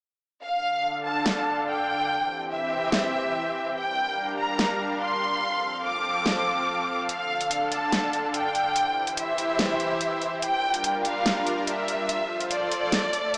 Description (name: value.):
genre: heavy wobble dubstep.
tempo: 144 BPM.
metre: 4/4.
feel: half-time.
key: D minor.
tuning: A4 = 442 Hz.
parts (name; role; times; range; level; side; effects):
rich studio violin section; melody; 0.4-13.4 s; D5 to D6; -29 LUFS; equal; dub echo.
supersaw pad; sustained chords; 0.7-13.4 s; D3 to G5; -31 LUFS; equal; low-pass filter.
dubstep drum kit; drums; 1.3-13.4 s; hi-hat, snare drum; -29 LUFS; equal; none.
room: wet digital room reverb, RT60 1.0 s.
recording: small speaker sound.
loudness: -26 LUFS.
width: mono.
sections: 0.4-13.4 A section.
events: none.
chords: 0.4 Dm; 2.1 C/E; 3.8 Gm7; 5.4 F; 7.1 Dm; 8.8 C/E; 10.4 Gm7; 12.1 F.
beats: | 0.42 0.84 1.26 1.67 | 2.09 2.51 2.92 3.34 | 3.76 4.17 4.59 5.01 | 5.42 5.84 6.26 6.67 | 7.09 7.51 7.92 8.34 | 8.76 9.17 9.59 10.01 | 10.42 10.84 11.26 11.67 | 12.09 12.51 12.92 13.34.